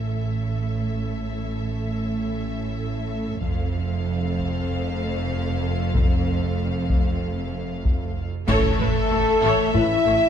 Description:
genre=cinematic, epic orchestral film score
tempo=95 BPM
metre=4/4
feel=straight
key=unclear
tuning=A4 = 440 Hz
part: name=warm symphonic violin section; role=melody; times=0.0-10.3 s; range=E5 to F5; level=-36 LUFS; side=left 5 dB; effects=none
part: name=rich symphonic violin section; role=second line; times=0.0-10.3 s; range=A4 to E5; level=-35 LUFS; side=left 2 dB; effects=none
part: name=rich symphonic viola section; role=accompaniment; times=0.0-10.1 s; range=A4 to C#5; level=-32 LUFS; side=equal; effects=none
part: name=warm French horn section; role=sustained chords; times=0.0-10.3 s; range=A3 to E4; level=-27 LUFS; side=left 4 dB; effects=none
part: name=rich symphonic cello section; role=bass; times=0.0-10.1 s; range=F2 to A2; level=-28 LUFS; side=right 1 dB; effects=none
part: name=rich symphonic double bass section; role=bass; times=0.0-10.1 s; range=F1 to A1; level=-28 LUFS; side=right 3 dB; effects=none
part: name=taiko ensemble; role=drums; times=3.4-10.0 s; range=none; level=-24 LUFS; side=left 1 dB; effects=none
part: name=cymbal swell, clash cymbals and concert bass drum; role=percussion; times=6.0-9.7 s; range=none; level=-29 LUFS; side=equal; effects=none
part: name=mellow hollow flute section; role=second line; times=8.5-10.3 s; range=A4 to E5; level=-31 LUFS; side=left 3 dB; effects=none
part: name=dark trombone section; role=sustained chords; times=8.5-10.0 s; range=E3 to C#4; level=-34 LUFS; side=right 1 dB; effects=none
part: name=mellow trumpet section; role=stabs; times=8.5-10.3 s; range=A4 to E5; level=-27 LUFS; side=right 5 dB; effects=none
room=moderate scoring stage reverb, RT60 1.9 s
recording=dark, warm production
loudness=-21 LUFS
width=side -8 dB against mid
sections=0.0-8.5 A section; 8.5-10.3 B section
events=band accent 8.5-9.1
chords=0.0 A; 3.4 F; 8.5 A

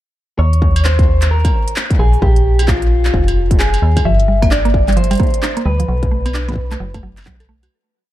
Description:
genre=IDM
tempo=131 BPM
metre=4/4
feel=swing 62% on 16ths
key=unclear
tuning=A4 = 441 Hz
part: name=electric guitar at the edge of break-up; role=melody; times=0.4-7.0 s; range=E#4 to E5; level=-20 LUFS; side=left 1 dB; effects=digital delay
part: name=metallic FM bass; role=bass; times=0.4-7.7 s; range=E#1 to D#2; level=-14 LUFS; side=equal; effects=none
part: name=industrial drum kit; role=drums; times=0.5-7.7 s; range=cabasa, handclaps, hi-hat, struck metal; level=-24 LUFS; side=equal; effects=none
part: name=electronic kick drum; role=drums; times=0.6-7.4 s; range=none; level=-16 LUFS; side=equal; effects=distortion
part: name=mallet-like synth pluck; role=arpeggios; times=4.1-7.7 s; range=F3 to A4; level=-21 LUFS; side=right 4 dB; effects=chorus
room=digital ambience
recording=dark, warm production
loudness=-12 LUFS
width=side -14 dB against mid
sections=0.4-7.7 chorus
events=fade-out 5.3-7.7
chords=0.4 D#5; 2.2 A#5; 4.1 Gm7; 5.9 B7(no3)

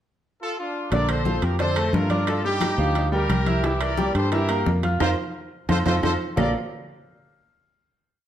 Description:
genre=latin, salsa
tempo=176 BPM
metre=4/4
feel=straight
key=Bb major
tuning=A4 = 440 Hz
part: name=clear horn section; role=melody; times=0.4-6.5 s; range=D4 to D5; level=-27 LUFS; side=equal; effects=none
part: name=clear concert grand piano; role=accompaniment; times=0.9-6.5 s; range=D3 to F6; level=-26 LUFS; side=right 1 dB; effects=none
part: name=fingered electric bass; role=bass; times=0.9-6.5 s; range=Bb1 to G2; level=-24 LUFS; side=equal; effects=none
part: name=bongos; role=percussion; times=0.9-6.5 s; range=none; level=-33 LUFS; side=left 6 dB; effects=none
part: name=congas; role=percussion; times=0.9-6.5 s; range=none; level=-30 LUFS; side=left 2 dB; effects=none
part: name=timbales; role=percussion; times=0.9-6.5 s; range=none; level=-32 LUFS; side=right 5 dB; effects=none
part: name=claves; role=percussion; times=1.1-6.5 s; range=none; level=-38 LUFS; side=left 2 dB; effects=none
room=moderate large studio reverb, RT60 1.2 s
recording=none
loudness=-20 LUFS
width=side -10 dB against mid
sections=0.0-0.9 pickup bar; 0.9-6.4 verse; 6.4-7.7 final chord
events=band accent 5.0-6.4; drum fill 5.9-6.4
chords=0.0 Dm; 0.9 Bbmaj7; 2.3 Gm7; 3.6 C7; 5.0 Fsus4; 5.7 F; 6.4 Bbmaj7

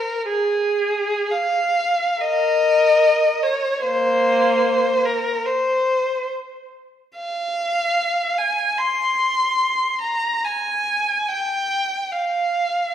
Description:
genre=classical, free, expressive piece for unaccompanied violin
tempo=free time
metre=none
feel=none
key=F minor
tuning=A4 = 439 Hz
part: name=rich violin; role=solo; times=0.0-12.9 s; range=Bb3 to C6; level=-18 LUFS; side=equal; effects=none
room=wet recital hall reverb, RT60 1.7 s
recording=heard from further back in the room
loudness=-18 LUFS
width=side -10 dB against mid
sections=0.0-12.9 A section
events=none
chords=none

